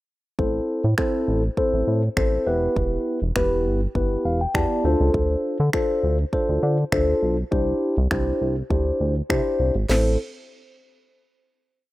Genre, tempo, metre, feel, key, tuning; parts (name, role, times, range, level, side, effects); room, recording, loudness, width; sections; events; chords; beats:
dance-pop; 101 BPM; 4/4; straight; A minor; A4 = 440 Hz
mellow tine electric piano; accompaniment; 0.4-10.2 s; B3 to A5; -22 LUFS; left 1 dB; phaser
chorused synth bass; bass; 0.4-10.2 s; E1 to D3; -23 LUFS; equal; sidechain pumping
house drum kit; drums; 0.4-10.0 s; crash cymbal, finger snaps, kick drum, snare drum; -26 LUFS; equal
little or no reverb; rough home demo mix; -20 LUFS; side -17 dB against mid
0.4-9.9 verse; 9.9-11.9 final chord
tine electric piano fill 4.0-5.1
0.4 Am; 2.5 Em; 4.8 Dm7; 7.5 Cadd9; 9.9 Am
| 0.39 0.98 1.58 2.17 | 2.77 3.36 3.95 4.55 | 5.14 5.74 6.33 6.92 | 7.52 8.11 8.71 9.30 | 9.89